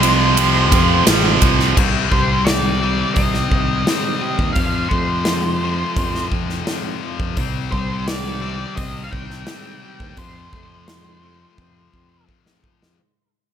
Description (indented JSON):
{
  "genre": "quiet-loud alternative rock",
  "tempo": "86 BPM",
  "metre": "4/4",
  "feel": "straight",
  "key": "unclear",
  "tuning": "A4 = 435 Hz",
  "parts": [
    { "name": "octave-fuzz lead guitar", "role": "melody", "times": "0.0-12.2 s", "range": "C5 to G5", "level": "-24 LUFS", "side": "right 1 dB", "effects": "distortion, digital delay" },
    { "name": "scooped high-gain guitar", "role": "riff", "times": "0.0-13.0 s", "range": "F2 to C4", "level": "-23 LUFS", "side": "left 13 dB", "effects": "distortion" },
    { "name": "tight distorted guitar", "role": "riff", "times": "0.0-1.8 s", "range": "F2 to C4", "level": "-18 LUFS", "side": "right 16 dB", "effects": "distortion" },
    { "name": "growling fingered electric bass", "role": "bass", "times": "0.0-13.0 s", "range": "A1 to F2", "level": "-22 LUFS", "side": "equal", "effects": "overdrive" },
    { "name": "big rock drum kit", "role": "drums", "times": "0.0-13.0 s", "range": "crash cymbal, hi-hat, kick drum, ride cymbal, snare drum", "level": "-20 LUFS", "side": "right 1 dB", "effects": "none" },
    { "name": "electric guitar at the edge of break-up", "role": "arpeggios", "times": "1.8-13.0 s", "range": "F2 to G4", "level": "-27 LUFS", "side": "left 1 dB", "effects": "tremolo" }
  ],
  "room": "light reverb",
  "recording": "none",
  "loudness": "-15 LUFS",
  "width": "side -8 dB against mid",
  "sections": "0.0-1.8 A section; 1.8-13.0 B section",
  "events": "fade-out 1.8-13.0; drum fill 11.6-13.0",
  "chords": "0.0 F; 1.8 Cm; 4.6 F; 7.4 Cm; 10.2 F",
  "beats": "0.38 1.07 | 1.77 2.47 3.17 3.87 | 4.57 5.27 5.97 6.67 | 7.37 8.07 8.78 9.48 | 10.18 10.88 11.58 12.28"
}